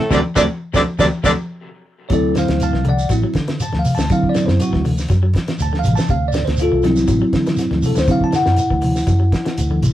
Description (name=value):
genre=afrobeat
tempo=120 BPM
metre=4/4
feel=straight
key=D mixolydian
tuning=A4 = 440 Hz
part: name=clear alto saxophone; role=melody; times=0.0-1.3 s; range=A4 to D5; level=-18 LUFS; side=right 3 dB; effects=none
part: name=clear trumpet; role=second line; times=0.0-1.3 s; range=A3 to D4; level=-24 LUFS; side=right 1 dB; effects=none
part: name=growling baritone saxophone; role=second line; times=0.0-1.3 s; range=A2 to D3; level=-22 LUFS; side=left 3 dB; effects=none
part: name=electric guitar at the edge of break-up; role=arpeggios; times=0.0-9.9 s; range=C3 to F#3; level=-26 LUFS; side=left 4 dB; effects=tape echo
part: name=electric guitar at the edge of break-up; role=stabs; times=0.0-1.3 s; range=A3 to D4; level=-25 LUFS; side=right 5 dB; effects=none
part: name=vintage muted fingered electric bass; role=bass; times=0.0-9.9 s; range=A1 to D3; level=-19 LUFS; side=equal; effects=none
part: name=bell-like tine electric piano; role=accompaniment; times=0.1-9.9 s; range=F#3 to A5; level=-19 LUFS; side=equal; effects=phaser
part: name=cloth-damped thuddy drum kit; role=drums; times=0.1-9.9 s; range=hi-hat, kick drum, snare drum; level=-22 LUFS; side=equal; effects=none
part: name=congas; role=percussion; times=0.1-9.9 s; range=none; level=-23 LUFS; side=equal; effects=none
part: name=shekere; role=percussion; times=0.1-9.9 s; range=none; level=-28 LUFS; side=right 2 dB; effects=none
room=wet booth ambience, RT60 0.2 s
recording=rough rehearsal-room recording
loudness=-14 LUFS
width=side -13 dB against mid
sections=0.0-2.1 A section; 2.1-9.9 B section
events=band accent 0.1-2.1; drum fill 1.1-2.1; tine electric piano solo 2.1-9.9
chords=0.0 D7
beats=| 0.11 0.61 1.11 1.61 | 2.11 2.60 3.10 3.60 | 4.10 4.60 5.09 5.59 | 6.09 6.59 7.09 7.58 | 8.08 8.58 9.08 9.58